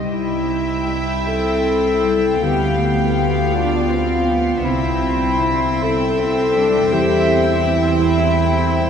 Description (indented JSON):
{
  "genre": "classical, slow romantic movement for symphony orchestra",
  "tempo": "47-56 BPM (dotted quarters)",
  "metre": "6/8",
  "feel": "rubato",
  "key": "C major",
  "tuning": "A4 = 440 Hz",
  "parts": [
    { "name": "clear studio violin section", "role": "melody", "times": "0.0-8.9 s", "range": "G5", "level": "-28 LUFS", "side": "left 4 dB", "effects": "none" },
    { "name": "mellow clarinet", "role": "second line", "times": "0.0-8.9 s", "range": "E4 to A4", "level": "-20 LUFS", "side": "left 2 dB", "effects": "none" },
    { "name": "warm studio violin section", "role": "second line", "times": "0.0-8.9 s", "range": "E5 to F5", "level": "-25 LUFS", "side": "left 2 dB", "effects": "none" },
    { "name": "warm studio viola section", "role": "accompaniment", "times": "0.0-8.9 s", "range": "B3 to E4", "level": "-24 LUFS", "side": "right 3 dB", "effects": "none" },
    { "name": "concert harp", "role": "arpeggios", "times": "0.0-8.9 s", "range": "C3 to E5", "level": "-24 LUFS", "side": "left 6 dB", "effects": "none" },
    { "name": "rich studio double bass section", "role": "bass", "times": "0.0-8.9 s", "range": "C2 to E2", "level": "-23 LUFS", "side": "right 3 dB", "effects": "none" },
    { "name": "mellow French horn section", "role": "sustained chords", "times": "0.9-8.9 s", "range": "none", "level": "barely audible", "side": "none", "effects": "none" },
    { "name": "clear studio cello section", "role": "bass", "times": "1.3-8.9 s", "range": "A3 to E4", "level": "-24 LUFS", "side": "right 2 dB", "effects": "none" }
  ],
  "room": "wet cathedral reverb, RT60 5.3 s",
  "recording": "none",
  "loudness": "-15 LUFS",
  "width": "side -7 dB against mid",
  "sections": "0.0-8.9 A section",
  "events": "none",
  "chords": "0.0 C; 2.4 G7/D; 4.6 C; 6.9 C/E",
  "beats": "| 0.03 1.27 | 2.42 3.52 | 4.63 5.82 | 6.92 8.00"
}